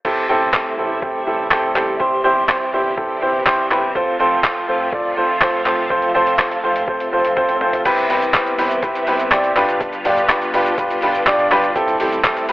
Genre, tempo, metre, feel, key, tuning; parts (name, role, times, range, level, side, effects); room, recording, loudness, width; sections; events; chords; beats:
dance-pop; 123 BPM; 4/4; straight; C major; A4 = 440 Hz
warm baby grand piano; accompaniment; 0.0-12.5 s; C4 to D5; -17 LUFS; equal
string machine, violins; sustained chords; 0.0-12.5 s; C3 to F4; -25 LUFS; equal; ensemble chorus, sidechain pumping
boom bap sampler-style drum kit; drums; 0.0-12.5 s; crash cymbal, handclaps, hi-hat, kick drum, shaker, toms; -20 LUFS; equal
round analog bass; bass; 0.3-12.5 s; F1 to C2; -38 LUFS; equal; sidechain pumping
swell; sound effects; 6.5-7.9 s; -30 LUFS; equal
moderate digital room reverb, RT60 1.1 s; dry, gritty hardware recording, telephone sound; -15 LUFS; side -18 dB against mid
0.0-7.9 A section; 7.9-12.5 B section
drum fill 7.4-7.9
0.0 Am7; 2.0 C/G; 4.0 F; 7.9 Cmaj7; 9.6 G7; 11.8 Am7
| 0.05 0.54 1.02 1.51 | 2.00 2.49 2.98 3.46 | 3.95 4.44 4.93 5.42 | 5.90 6.39 6.88 7.37 | 7.85 8.34 8.83 9.32 | 9.80 10.29 10.78 11.27 | 11.76 12.24